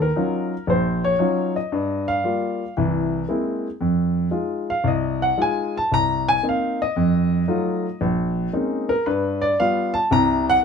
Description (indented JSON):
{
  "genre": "solo jazz",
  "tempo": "114 BPM",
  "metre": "4/4",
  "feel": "swing 68% on 8ths",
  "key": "unclear",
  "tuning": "A4 = 440 Hz",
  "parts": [
    { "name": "warm concert grand piano", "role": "solo", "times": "0.0-10.6 s", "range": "Bb1 to Bb5", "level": "-19 LUFS", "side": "left 1 dB", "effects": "none" }
  ],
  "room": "light reverb",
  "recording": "minimal, uncompressed stereo recording",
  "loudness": "-19 LUFS",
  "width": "side -6 dB against mid",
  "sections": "0.0-10.6 A section",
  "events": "grand piano solo 0.0-10.6",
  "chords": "0.0 Ebm9; 1.7 Gm7; 2.8 Caug7; 3.8 Fm7; 5.9 Cm7; 7.0 F7b9; 8.0 Bbm11; 9.1 G7; 10.1 C7(b5, no3)"
}